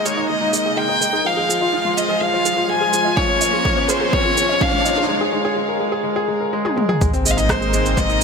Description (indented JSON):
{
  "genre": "piano and strings electronica",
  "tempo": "125 BPM",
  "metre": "4/4",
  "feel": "straight",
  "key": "Ab major",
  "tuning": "A4 = 441 Hz",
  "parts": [
    { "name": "rich violin", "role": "melody", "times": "0.0-8.2 s", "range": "C5 to Ab5", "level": "-19 LUFS", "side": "left 1 dB", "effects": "none" },
    { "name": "lush unison pad", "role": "sustained chords", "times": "0.0-8.2 s", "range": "C3 to F4", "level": "-27 LUFS", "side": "equal", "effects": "chorus, sidechain pumping" },
    { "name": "warm upright piano", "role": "riff", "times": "0.0-8.2 s", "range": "F3 to Bb4", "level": "-22 LUFS", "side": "left 1 dB", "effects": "ping-pong delay" },
    { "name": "warm sub bass", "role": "bass", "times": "0.0-8.2 s", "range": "F1 to Bb1", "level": "-24 LUFS", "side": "equal", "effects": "sidechain pumping, high-pass filter" },
    { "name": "riser and sub drop", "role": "sound effects", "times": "0.8-8.2 s", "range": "none", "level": "-27 LUFS", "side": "equal", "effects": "none" },
    { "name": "soft round pluck", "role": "arpeggios", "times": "0.1-5.0 s", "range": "Ab3 to Eb5", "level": "-31 LUFS", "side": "right 3 dB", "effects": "none" },
    { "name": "deep house drum kit", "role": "drums", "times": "0.1-8.2 s", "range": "rim click, shaker, toms", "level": "-22 LUFS", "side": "right 2 dB", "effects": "overdrive" },
    { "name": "electronic kick drum", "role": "drums", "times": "3.2-8.1 s", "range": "none", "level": "-22 LUFS", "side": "equal", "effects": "overdrive" }
  ],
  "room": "moderate huge ambient reverb, RT60 6.5 s",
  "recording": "none",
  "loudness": "-16 LUFS",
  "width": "side -5 dB against mid",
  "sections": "0.0-7.0 A section; 7.0-8.2 B section",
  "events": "build-up 0.0-7.0; riser 0.8-5.1; break 5.1-7.0; drum fill 6.7-7.0; drop 7.0-8.2; impact 7.0-8.2",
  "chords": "0.0 Absus2; 1.3 Fm; 3.2 Bbm; 5.1 Absus2; 7.0 Abadd9"
}